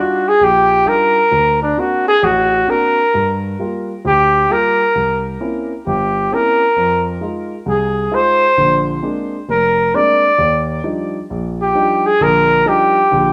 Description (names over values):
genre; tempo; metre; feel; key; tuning
jazz; 132 BPM; 4/4; swing 66% on 8ths; Eb major; A4 = 440 Hz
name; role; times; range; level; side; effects
mellow trumpet; melody; 0.0-13.3 s; D4 to D5; -15 LUFS; equal; tape echo
warm grand piano; accompaniment; 0.0-13.3 s; F1 to F#4; -23 LUFS; equal; none
room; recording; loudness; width
wet studio reverb, RT60 0.6 s; rough home demo mix; -15 LUFS; mono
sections
0.0-13.3 A section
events
none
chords
0.0 Ebmaj9; 1.3 D7b13; 3.1 Gm7; 4.9 C7b9; 6.8 Fm7; 8.6 Bb9; 10.4 Ebmaj9